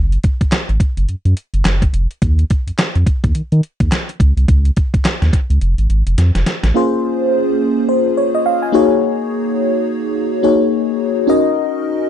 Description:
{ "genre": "R&B, new jack swing", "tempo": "106 BPM", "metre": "4/4", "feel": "swing 60% on 16ths", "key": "Bb minor", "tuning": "A4 = 441 Hz", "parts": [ { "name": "warm sub bass", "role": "bass", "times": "0.0-6.7 s", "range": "F1 to Eb3", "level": "-13 LUFS", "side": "equal", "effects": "none" }, { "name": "gated 80s digital drum machine", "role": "drums", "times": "0.1-6.7 s", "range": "handclaps, hi-hat, kick drum, snare drum", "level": "-16 LUFS", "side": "equal", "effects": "gated reverb, gated reverb snare, overdrive, vintage 12-bit sampler grit" }, { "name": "FM electric piano with soft pad layer", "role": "accompaniment", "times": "6.7-12.1 s", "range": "Bb3 to Ab5", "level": "-13 LUFS", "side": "left 1 dB", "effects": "chorus, phaser" } ], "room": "little or no reverb", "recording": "dry, close 1970s-style studio recording", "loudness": "-13 LUFS", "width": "side -9 dB against mid", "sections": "0.0-6.7 A section; 6.7-12.1 B section", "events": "drum fill 6.2-6.7", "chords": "0.0 N.C.; 5.6 Fm; 6.7 Bbm9; 8.7 Gb69; 11.3 Ebm7", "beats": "0.52 1.09 1.65 | 2.22 2.79 3.35 3.92 | 4.48 5.05 5.62 6.18 | 6.75 7.31 7.88 8.45 | 9.01 9.58 10.14 10.71 | 11.28 11.84" }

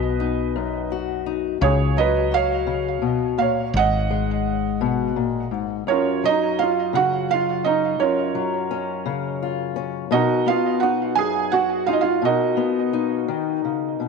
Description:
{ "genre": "acoustic folk-pop ballad", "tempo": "56 BPM (dotted quarters)", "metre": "6/8", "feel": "straight", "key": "F# major", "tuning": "A4 = 440 Hz", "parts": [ { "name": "felt-muted upright piano", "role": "melody", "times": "0.0-14.0 s", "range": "C#4 to G#5", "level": "-22 LUFS", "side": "right 8 dB", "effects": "tape echo" }, { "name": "fingerpicked old ladder-braced acoustic guitar", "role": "accompaniment", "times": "0.0-14.1 s", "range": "F#2 to F#4", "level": "-23 LUFS", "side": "left 10 dB", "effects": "none" }, { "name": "woody fretless electric bass", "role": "bass", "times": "0.0-5.8 s", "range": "G#1 to C#2", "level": "-26 LUFS", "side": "equal", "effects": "none" } ], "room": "moderate echo chamber reverb, RT60 2.0 s, small room ambience", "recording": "1960s-style stereo with parts hard left and right", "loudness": "-19 LUFS", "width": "side -4 dB against mid", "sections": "0.0-5.9 A section; 5.9-14.1 A section", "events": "none", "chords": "0.0 B; 1.6 C#7sus4; 3.7 G#m9; 5.9 F#maj7; 10.1 Bmaj7", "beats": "0.55 | 1.61 2.67 | 3.74 4.80 | 5.87 6.93 | 7.99 9.05 | 10.11 11.17 | 12.23 13.29" }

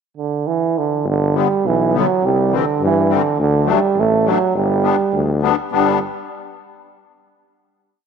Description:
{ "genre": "alpine folk, alpine dance band", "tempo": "103 BPM", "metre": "2/4", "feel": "straight", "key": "G major", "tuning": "A4 = 440 Hz", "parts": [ { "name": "clear euphonium", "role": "melody", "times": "0.2-6.0 s", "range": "D3 to A3", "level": "-17 LUFS", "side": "right 6 dB", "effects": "none" }, { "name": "clear tuba", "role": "bass", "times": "1.0-6.0 s", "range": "G1 to G2", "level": "-19 LUFS", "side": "left 2 dB", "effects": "none" }, { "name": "musette accordion", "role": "accompaniment", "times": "1.3-6.0 s", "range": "D3 to D4", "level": "-21 LUFS", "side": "left 12 dB", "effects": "none" } ], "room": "moderate echo chamber reverb, RT60 2.3 s", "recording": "1960s-style stereo with parts hard left and right", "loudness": "-14 LUFS", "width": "side -6 dB against mid", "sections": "0.0-1.0 pickup bar; 1.0-5.7 A section; 5.7-6.9 final chord", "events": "none", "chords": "0.0 N.C.; 1.0 G; 2.2 C; 3.4 D; 4.5 G", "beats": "0.46 | 1.05 1.64 | 2.23 2.81 | 3.38 3.96 | 4.54 5.12 | 5.71" }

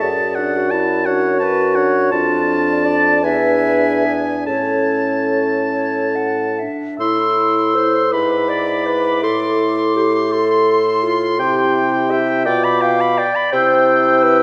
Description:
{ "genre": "classical, slow romantic movement for wind quintet", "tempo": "45-58 BPM (dotted quarters)", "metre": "6/8", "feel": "rubato", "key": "A major, A minor from 7.0 s", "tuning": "A4 = 440 Hz", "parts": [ { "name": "silver concert flute", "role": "melody", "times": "0.0-14.4 s", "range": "B4 to E6", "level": "-24 LUFS", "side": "equal", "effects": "none" }, { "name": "clear oboe", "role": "second line", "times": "0.0-14.4 s", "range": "F#5 to C6", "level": "-23 LUFS", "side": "equal", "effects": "none" }, { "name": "dark clarinet", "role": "accompaniment", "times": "0.0-14.4 s", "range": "D4 to F5", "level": "-21 LUFS", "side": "equal", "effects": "none" }, { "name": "warm French horn", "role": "accompaniment", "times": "0.0-14.4 s", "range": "C#4 to F#4", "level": "-26 LUFS", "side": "equal", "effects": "none" }, { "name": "warm bassoon", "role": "bass", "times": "0.0-14.4 s", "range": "E2 to C3", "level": "-23 LUFS", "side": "equal", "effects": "none" } ], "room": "moderate concert hall reverb, RT60 1.9 s", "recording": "none", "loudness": "-16 LUFS", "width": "mono", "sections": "0.0-7.0 A section; 7.0-14.4 B section", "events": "none", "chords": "0.0 D/F#; 2.1 Dm/F; 3.2 E7; 4.5 A; 7.0 Am; 8.1 E7/G#; 9.2 Am; 11.4 C; 12.5 G7/B; 13.5 C", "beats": "| 0.02 1.07 | 2.12 3.23 | 4.47 5.74 | 7.01 8.13 | 9.23 10.32 | 11.40 12.46 | 13.53" }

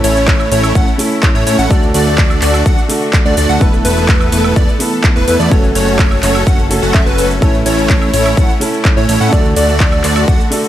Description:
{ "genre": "EDM, festival progressive house", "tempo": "126 BPM", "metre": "4/4", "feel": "straight", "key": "A major", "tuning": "A4 = 440 Hz", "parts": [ { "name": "warm baby grand piano", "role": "accompaniment", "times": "0.0-10.7 s", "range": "A3 to A4", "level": "-19 LUFS", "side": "right 1 dB", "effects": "sidechain pumping, digital delay" }, { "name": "bright symphonic string section", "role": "sustained chords", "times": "0.0-10.7 s", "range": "D3 to A4", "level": "-24 LUFS", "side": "left 2 dB", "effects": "sidechain pumping" }, { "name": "plucky unison lead", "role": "arpeggios", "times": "0.0-10.4 s", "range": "B4 to F#5", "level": "-19 LUFS", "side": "left 1 dB", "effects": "sidechain pumping, digital delay" }, { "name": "supersaw chords", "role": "riff", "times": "0.0-10.4 s", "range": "A3 to F#5", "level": "-18 LUFS", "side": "right 1 dB", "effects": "sidechain pumping, digital delay" }, { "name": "fat analog bass", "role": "bass", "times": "0.0-10.4 s", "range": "E1 to A2", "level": "-17 LUFS", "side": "equal", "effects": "sidechain pumping" }, { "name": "big-room dance drum kit", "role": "drums", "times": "0.0-10.7 s", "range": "handclaps, hi-hat, ride cymbal, shaker, woodblock", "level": "-20 LUFS", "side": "equal", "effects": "overdrive, studio reverb" }, { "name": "electronic kick drum", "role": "drums", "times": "0.3-10.4 s", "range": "none", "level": "-12 LUFS", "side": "equal", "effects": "overdrive, studio reverb" } ], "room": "digital ambience", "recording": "none", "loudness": "-9 LUFS", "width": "side -12 dB against mid", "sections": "0.0-10.7 A section", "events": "none", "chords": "0.0 A; 1.7 D; 3.6 Esus4; 5.5 F#m; 7.4 A; 9.3 D", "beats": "0.28 0.75 1.23 | 1.71 2.18 2.66 3.13 | 3.61 4.09 4.56 5.04 | 5.52 5.99 6.47 6.95 | 7.42 7.90 8.37 8.85 | 9.33 9.80 10.28" }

